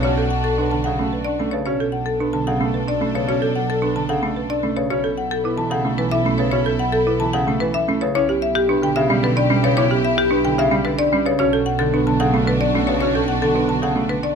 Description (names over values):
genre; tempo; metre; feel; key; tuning
classical, minimalist pattern music; 111 BPM; 3/4; straight; unclear; A4 = 441 Hz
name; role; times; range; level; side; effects
marimba with hard mallets; melody; 0.0-14.3 s; G4 to A5; -22 LUFS; left 7 dB; none
clear grand piano; accompaniment; 0.0-14.3 s; C#3 to C#4; -25 LUFS; right 1 dB; none
clear symphonic string section; sustained chords; 0.0-14.3 s; D4 to A4; -28 LUFS; equal; none
folk marimba with hard mallets; arpeggios; 0.0-14.3 s; C#4 to B4; -23 LUFS; right 7 dB; none
bright symphonic double bass section; bass; 0.0-14.3 s; B1; -24 LUFS; right 2 dB; none
room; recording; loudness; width
light reverb; close, detailed microphones; -17 LUFS; side -6 dB against mid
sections
0.0-14.3 A section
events
none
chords
0.0 D6/B; 4.9 F#m7/B; 8.1 Em7/B; 11.4 D6/B